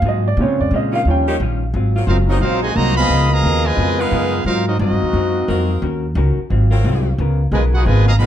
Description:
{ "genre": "jazz", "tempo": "177 BPM", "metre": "4/4", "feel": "swing 63% on 8ths", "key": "unclear", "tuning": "A4 = 439 Hz", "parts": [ { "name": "clear grand piano", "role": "accompaniment", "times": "0.0-1.4 s", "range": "C3 to G5", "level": "-18 LUFS", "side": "right 2 dB", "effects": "none" }, { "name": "vintage hollow-body jazz guitar", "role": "accompaniment", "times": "0.0-8.3 s", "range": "Ab2 to Bb4", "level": "-25 LUFS", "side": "left 4 dB", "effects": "none" }, { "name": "upright bass", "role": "bass", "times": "0.0-8.3 s", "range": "Gb1 to Bb2", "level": "-16 LUFS", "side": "equal", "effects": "none" }, { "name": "edgy saxophone section", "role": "sustained chords", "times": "0.9-8.3 s", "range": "C3 to Cb5", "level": "-25 LUFS", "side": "left 1 dB", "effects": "none" }, { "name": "bright trumpet section", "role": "melody", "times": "2.1-8.3 s", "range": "C4 to Cb6", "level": "-20 LUFS", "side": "right 1 dB", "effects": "none" }, { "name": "clear trombone section", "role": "second line", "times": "2.1-8.3 s", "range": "Cb3 to Gb4", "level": "-21 LUFS", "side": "right 1 dB", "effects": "none" } ], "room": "light reverb", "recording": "dark, warm production", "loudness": "-14 LUFS", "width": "side -10 dB against mid", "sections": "0.0-1.7 A section; 1.7-8.3 B section", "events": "grand piano solo 0.0-1.7", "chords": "0.4 Bbm7; 1.1 Eb9; 1.7 Ab13; 3.1 Db13; 4.5 Ab13; 5.8 Ebm7; 6.5 Ab13; 7.2 Db13" }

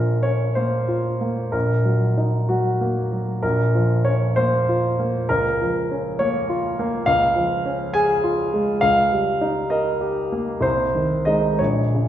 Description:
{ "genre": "classical, romantic character piece for solo piano", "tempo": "58-70 BPM (dotted quarters)", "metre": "6/8", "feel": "rubato", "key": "Bb minor, Db major from 7.1 s", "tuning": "A4 = 439 Hz", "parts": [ { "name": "warm grand piano", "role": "solo", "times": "0.0-12.1 s", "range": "Bb1 to Ab5", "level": "-18 LUFS", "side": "equal", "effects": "none" } ], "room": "wet recital hall reverb, RT60 1.5 s", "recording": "heard from further back in the room", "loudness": "-18 LUFS", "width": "side -11 dB against mid", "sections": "0.0-12.1 A section", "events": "none", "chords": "0.0 Bbm; 1.5 Ebm/Bb; 3.4 Bbm; 5.3 Bbm/Db; 7.1 Db; 8.8 Eb7/Db; 10.6 Ab/C" }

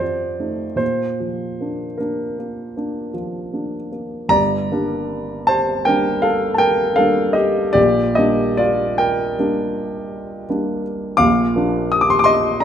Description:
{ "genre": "classical, romantic nocturne for solo piano", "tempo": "52 BPM (dotted quarters)", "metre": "9/8", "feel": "uneven beats, rubato", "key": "Bb major, G minor from 4.3 s", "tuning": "A4 = 444 Hz", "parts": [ { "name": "warm grand piano", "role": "solo", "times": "0.0-12.6 s", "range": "G1 to Eb6", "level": "-17 LUFS", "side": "equal", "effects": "none" } ], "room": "moderate recital hall reverb, RT60 1.6 s", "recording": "close, detailed microphones", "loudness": "-16 LUFS", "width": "side -8 dB against mid", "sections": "0.0-4.3 A section; 4.3-12.6 B section", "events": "none", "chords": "0.0 F7; 0.8 Bb; 4.3 Gm; 7.8 Gm/Bb; 11.2 Bb" }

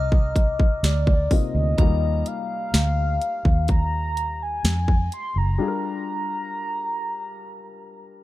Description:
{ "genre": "contemporary R&B", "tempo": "63 BPM", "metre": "4/4", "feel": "straight", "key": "unclear", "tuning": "A4 = 439 Hz", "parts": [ { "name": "mellow horn-like synth lead", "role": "melody", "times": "0.0-8.2 s", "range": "D5 to C6", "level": "-27 LUFS", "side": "left 1 dB", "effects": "chorus, ping-pong delay" }, { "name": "dark baby grand piano", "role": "accompaniment", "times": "0.0-8.2 s", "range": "C3 to Bb4", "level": "-31 LUFS", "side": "left 6 dB", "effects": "none" }, { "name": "vintage muted fingered electric bass", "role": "bass", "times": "0.0-5.6 s", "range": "F#1 to F2", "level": "-23 LUFS", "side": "equal", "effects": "none" }, { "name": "soft synth bell", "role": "texture", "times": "0.0-4.7 s", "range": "Bb5 to F6", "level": "-40 LUFS", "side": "left 1 dB", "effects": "chorus, phaser, ping-pong delay" }, { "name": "trap drum kit", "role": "drums", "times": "0.1-5.3 s", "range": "hi-hat, kick drum, snare drum", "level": "-20 LUFS", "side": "equal", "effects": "none" } ], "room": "little or no reverb", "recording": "dark, warm production", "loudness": "-20 LUFS", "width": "side -16 dB against mid", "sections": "0.0-8.2 A section", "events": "break 5.6-8.2", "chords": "0.0 Cm11; 1.8 Ebmaj9; 5.6 Gm7" }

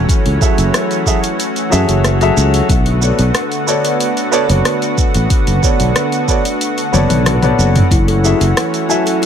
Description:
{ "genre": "sunset chillout", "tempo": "92 BPM", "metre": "4/4", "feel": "straight", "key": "unclear", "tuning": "A4 = 438 Hz", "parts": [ { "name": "dark baby grand piano", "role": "accompaniment", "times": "0.0-9.3 s", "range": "F#3 to G#5", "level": "-18 LUFS", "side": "moving between left 5 dB and right 7 dB", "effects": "auto-pan, ping-pong delay, shimmer reverb" }, { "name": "lush unison pad", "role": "sustained chords", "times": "0.0-9.3 s", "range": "D3 to F#4", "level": "-18 LUFS", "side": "equal", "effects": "chorus, shimmer reverb" }, { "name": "sustaining fretless electric bass", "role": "bass", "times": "0.0-8.5 s", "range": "F#1 to F#2", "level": "-14 LUFS", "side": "equal", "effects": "none" }, { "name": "deep house drum kit", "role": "drums", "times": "0.1-9.3 s", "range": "hi-hat, rim click, shaker, toms", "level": "-19 LUFS", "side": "equal", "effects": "none" }, { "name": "electronic kick drum", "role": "drums", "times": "0.1-8.0 s", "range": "none", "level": "-14 LUFS", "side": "equal", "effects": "none" }, { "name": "kalimba", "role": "arpeggios", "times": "7.9-9.3 s", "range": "E4 to A4", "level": "-19 LUFS", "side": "left 4 dB", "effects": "ping-pong delay" } ], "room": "light reverb", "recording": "none", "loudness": "-11 LUFS", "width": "side -8 dB against mid", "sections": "0.0-9.3 A section", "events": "drum fill 6.9-7.9", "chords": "0.0 F#m7; 2.7 Bm7; 7.9 F#m7" }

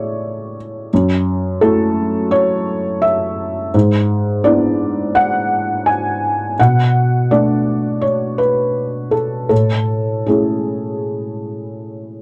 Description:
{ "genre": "neoclassical minimalist piano", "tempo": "84 BPM", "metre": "4/4", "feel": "uneven beats, rubato", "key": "unclear", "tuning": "A4 = 440 Hz", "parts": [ { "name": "felt-muted upright piano", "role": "solo", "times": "0.0-12.2 s", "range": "F#2 to G#5", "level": "-17 LUFS", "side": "equal", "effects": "none" } ], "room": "light reverb", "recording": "dry, close 1970s-style studio recording", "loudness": "-17 LUFS", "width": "mono", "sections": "0.0-12.2 A section", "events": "none", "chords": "0.0 Amaj7; 0.9 F#m7; 3.7 E7/G#; 6.6 Bm7; 9.5 Amaj7" }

